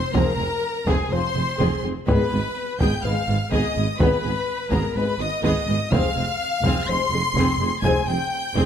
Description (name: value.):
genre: cinematic, epic orchestral film score.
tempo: 125 BPM.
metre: 4/4.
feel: straight.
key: unclear.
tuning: A4 = 440 Hz.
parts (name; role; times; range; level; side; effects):
rich studio violin section; melody; 0.0-8.7 s; Ab5 to C7; -30 LUFS; left 3 dB; none.
bright silver concert flute; second line; 0.0-8.5 s; Ab4 to C6; -30 LUFS; left 2 dB; none.
clear chamber violin section; second line; 0.0-8.7 s; Ab4 to C6; -29 LUFS; left 4 dB; none.
warm symphonic viola section; accompaniment; 0.1-8.7 s; Cb4 to Ab4; -29 LUFS; right 1 dB; none.
dark chamber double bass section; bass; 0.1-8.6 s; F1 to Ab1; -28 LUFS; right 2 dB; none.
dark tuba; bass; 0.1-8.6 s; F1 to Ab1; -28 LUFS; right 4 dB; none.
rich symphonic cello section; bass; 0.1-8.7 s; F2 to Ab2; -29 LUFS; right 1 dB; none.
taiko ensemble; drums; 0.1-8.7 s; none; -25 LUFS; equal; none.
mellow French horn section; sustained chords; 0.2-8.0 s; F3 to C5; -28 LUFS; left 5 dB; none.
room: light reverb.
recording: close, detailed microphones.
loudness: -20 LUFS.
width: side -8 dB against mid.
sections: 0.0-8.7 A section.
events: none.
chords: 0.0 Fm; 2.1 Abm; 5.9 Fm.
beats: | 0.14 0.63 1.11 1.59 | 2.08 2.56 3.04 3.52 | 3.99 4.47 4.95 5.43 | 5.91 6.39 6.88 7.36 | 7.84 8.32.